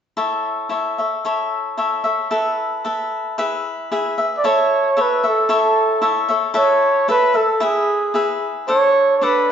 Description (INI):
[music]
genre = mexican folk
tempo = 113 BPM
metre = 2/4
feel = straight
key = A major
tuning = A4 = 439 Hz
[part]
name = cavaquinho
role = accompaniment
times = 0.2-9.5 s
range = D4 to F#5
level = -19 LUFS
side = left 2 dB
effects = none
[part]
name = mellow trumpet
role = melody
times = 4.4-9.5 s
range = G#4 to D5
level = -16 LUFS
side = right 2 dB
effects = none
[sound]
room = wet stone room reverb, RT60 1.3 s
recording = band playing live in one room, nothing above 7.8 kHz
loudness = -16 LUFS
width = side -8 dB against mid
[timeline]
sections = 0.2-4.4 A section; 4.4-9.5 B section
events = none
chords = 0.2 A; 2.3 Esus4; 3.4 E; 4.4 A; 6.6 Esus4; 7.6 E; 8.7 D